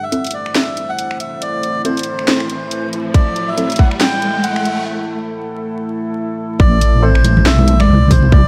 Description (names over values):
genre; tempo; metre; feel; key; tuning
deep dubstep; 139 BPM; 4/4; swing 57% on 16ths, half-time; A dorian; A4 = 444 Hz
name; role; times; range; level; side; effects
melodica; melody; 0.0-8.5 s; C5 to G5; -23 LUFS; equal; dub echo
deep dark ambient pad; sustained chords; 0.0-8.5 s; A3 to C5; -26 LUFS; equal; chorus, built-in reverb
riser; sound effects; 1.8-4.9 s; none; -28 LUFS; equal; none
filtered dub chord stab; stabs; 0.1-3.7, 7.0-7.2 s; C4 to A4; -26 LUFS; equal; subtle chorus, dub echo
garage drum kit; drums; 0.1-8.2 s; finger snaps, handclaps, hi-hat, snare drum; -21 LUFS; equal; overdrive
electronic kick drum; drums; 3.1-3.9, 6.6-8.4 s; none; -12 LUFS; equal; overdrive
deep soft wobble bass; bass; 6.6-8.5 s; A1 to C2; -14 LUFS; equal; chorus
congas; percussion; 7.2-8.3 s; none; -18 LUFS; equal; none
room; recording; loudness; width
light reverb, digital ambience; vinyl crackle; -15 LUFS; mono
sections
0.0-6.6 A section; 6.6-8.5 B section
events
build-up 0.0-6.6; riser 1.8-4.9; break 4.9-6.6; drop 6.6-8.5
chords
0.0 Am